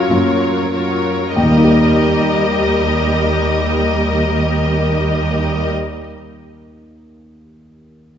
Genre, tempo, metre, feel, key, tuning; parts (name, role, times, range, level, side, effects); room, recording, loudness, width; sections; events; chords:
cinematic; 50 BPM; 3/4; rubato; A4 = 441 Hz
warm symphonic violin section; second line; 0.0-5.7 s; Bb4 to Eb5; -19 LUFS; left 4 dB
warm grand piano; accompaniment; 0.0-8.2 s; Eb2 to G5; -18 LUFS; equal
warm symphonic viola section; accompaniment; 0.0-5.7 s; Gb3 to G4; -20 LUFS; equal
warm symphonic cello section; bass; 0.1-5.7 s; Eb2 to Gb2; -19 LUFS; right 3 dB
moderate scoring stage reverb, RT60 2.0 s; nothing above 7.8 kHz; -13 LUFS; side -9 dB against mid
0.0-1.4 A section; 1.4-4.9 B section
slowing down 0.0-1.4
0.0 Gbmaj7; 1.4 Eb